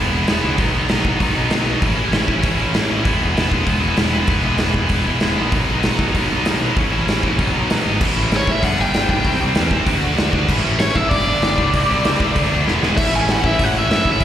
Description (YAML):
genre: punk rock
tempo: 194 BPM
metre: 4/4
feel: straight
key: unclear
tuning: A4 = 440 Hz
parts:
  - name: distorted electric guitar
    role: riff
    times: 0.0-14.2 s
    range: G2 to F#4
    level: -19 LUFS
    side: equal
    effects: overdrive
  - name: fuzz picked electric bass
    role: bass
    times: 0.0-14.2 s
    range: E1 to F#2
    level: -21 LUFS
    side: equal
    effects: overdrive
  - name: big rock drum kit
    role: drums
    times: 0.3-14.2 s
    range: crash cymbal, hi-hat, kick drum, snare drum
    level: -20 LUFS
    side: equal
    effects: none
  - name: overdriven electric guitar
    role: melody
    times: 8.4-14.2 s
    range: C#5 to G#5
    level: -20 LUFS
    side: left 1 dB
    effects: slapback echo
room: small room ambience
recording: live gig heard through the venue's PA, recital hall reverb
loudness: -15 LUFS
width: side -10 dB against mid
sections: 0.0-8.0 A section; 8.0-13.0 B section; 13.0-14.2 C section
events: drum fill 12.7-13.0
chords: 0.0 E; 0.6 B; 1.8 A; 3.0 E; 5.5 B; 6.8 A; 7.4 B; 8.0 A; 8.6 G; 9.3 C; 9.9 D; 10.5 A; 11.1 G; 11.7 C; 12.4 D; 12.7 E; 13.0 A